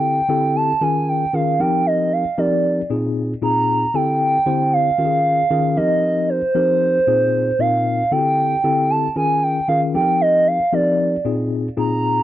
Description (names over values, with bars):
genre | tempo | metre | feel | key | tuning
funk | 115 BPM | 4/4 | straight | unclear | A4 = 439 Hz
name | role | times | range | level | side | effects
hollow clarinet-like synth lead | melody | 0.0-12.2 s | C5 to Bb5 | -17 LUFS | right 2 dB | chorus
mellow tine electric piano | accompaniment | 0.0-12.2 s | Bb2 to C5 | -20 LUFS | left 3 dB | medium stereo tremolo
room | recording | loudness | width
light reverb | dry, close 1970s-style studio recording | -16 LUFS | side -13 dB against mid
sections
0.0-12.2 A section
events
none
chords
0.0 D9sus4; 0.8 Eb9sus4; 1.6 F9sus4; 2.9 Bb9sus4; 3.9 D9sus4; 5.0 Eb9sus4; 5.8 F9sus4; 7.1 Bb9sus4; 8.1 D9sus4; 9.2 Eb9sus4; 9.9 F9sus4; 11.2 Bb9sus4